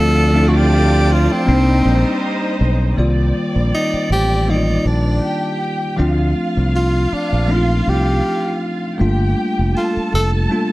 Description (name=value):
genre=lush 1970s-style soul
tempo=80 BPM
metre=4/4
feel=swing 54% on 16ths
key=C dorian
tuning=A4 = 440 Hz
part: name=breathy tenor saxophone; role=melody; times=0.0-10.3 s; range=C4 to A4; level=-20 LUFS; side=equal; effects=none
part: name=warm studio violin section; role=second line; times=0.0-10.7 s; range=G3 to A5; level=-25 LUFS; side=right 1 dB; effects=none
part: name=bell-like tine electric piano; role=accompaniment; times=0.0-10.7 s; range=Eb3 to D5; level=-19 LUFS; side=left 1 dB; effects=none
part: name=soft string machine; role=sustained chords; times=0.0-3.0 s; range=C5 to Eb6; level=-29 LUFS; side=equal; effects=ensemble chorus
part: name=fingered electric bass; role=bass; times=0.0-10.5 s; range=F1 to D2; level=-16 LUFS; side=equal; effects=none
room=small room ambience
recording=none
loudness=-14 LUFS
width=side -18 dB against mid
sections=0.0-3.0 A section; 3.0-10.7 B section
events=none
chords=0.0 Dm7; 1.5 Cm7; 3.0 Cm11; 6.0 Dm7; 9.0 Gm9